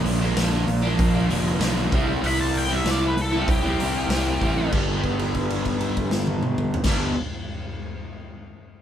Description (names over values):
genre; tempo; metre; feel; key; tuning
garage rock duo or trio; 96 BPM; 4/4; straight; unclear; A4 = 441 Hz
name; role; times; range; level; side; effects
crunchy overdriven guitar; riff; 0.0-7.1 s; G2 to E4; -24 LUFS; equal; none
fuzz fingered electric bass; bass; 0.0-7.1 s; F1 to C2; -26 LUFS; equal; overdrive
raw garage drum kit; drums; 0.1-7.0 s; crash cymbal, hi-hat, kick drum, snare drum, toms; -26 LUFS; equal; none
octave-fuzz lead guitar; melody; 2.3-4.7 s; G4 to B5; -28 LUFS; left 2 dB; distortion
room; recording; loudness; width
moderate studio reverb, RT60 0.6 s; band playing live in one room; -20 LUFS; side -10 dB against mid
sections
0.0-4.7 A section; 4.7-7.2 B section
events
lead electric guitar solo 0.0-4.7; held note 4.7-6.8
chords
0.0 Bb; 1.9 C; 4.7 G